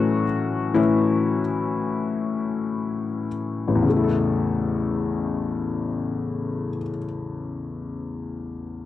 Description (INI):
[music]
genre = pop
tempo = 35-43 BPM (dotted quarters)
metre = 6/8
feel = straight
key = A major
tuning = A4 = 439 Hz
[part]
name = felt-muted upright piano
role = accompaniment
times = 0.0-8.9 s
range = A1 to A4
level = -22 LUFS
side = left 3 dB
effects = cassette tape
[sound]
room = light reverb, studio reverb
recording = home recording on cassette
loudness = -22 LUFS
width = side -13 dB against mid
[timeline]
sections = 0.0-3.9 A section; 3.9-7.3 B section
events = slowing down 0.0-3.9; felt piano solo 0.0-3.9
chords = 0.0 A